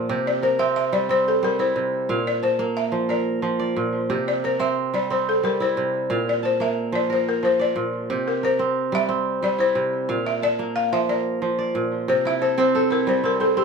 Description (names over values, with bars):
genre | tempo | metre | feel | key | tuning
west african traditional | 120 BPM (dotted quarters) | 12/8 | straight | C mixolydian | A4 = 439 Hz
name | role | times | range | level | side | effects
kora | arpeggios | 0.0-13.6 s | Bb2 to A5 | -22 LUFS | right 2 dB | tape echo
balafon | melody | 0.3-13.6 s | G4 to F5 | -22 LUFS | left 3 dB | none
room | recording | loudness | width
light reverb | close, detailed microphones | -20 LUFS | side -5 dB against mid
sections
0.0-12.1 A section; 12.1-13.6 B section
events
none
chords
0.1 C; 2.1 Bb; 4.1 C; 6.1 Bb; 8.1 C; 10.1 Bb; 12.1 C